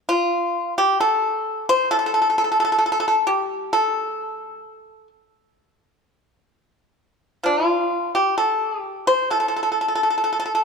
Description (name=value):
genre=chinese traditional, Chinese solo plucked strings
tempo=66 BPM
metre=4/4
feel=rubato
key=unclear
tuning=A4 = 436 Hz
part: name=pipa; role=solo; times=0.1-10.6 s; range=A2 to C5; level=-18 LUFS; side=equal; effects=none
room=moderate concert hall reverb, RT60 1.9 s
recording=none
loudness=-18 LUFS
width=side -5 dB against mid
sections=0.0-10.6 A section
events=none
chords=none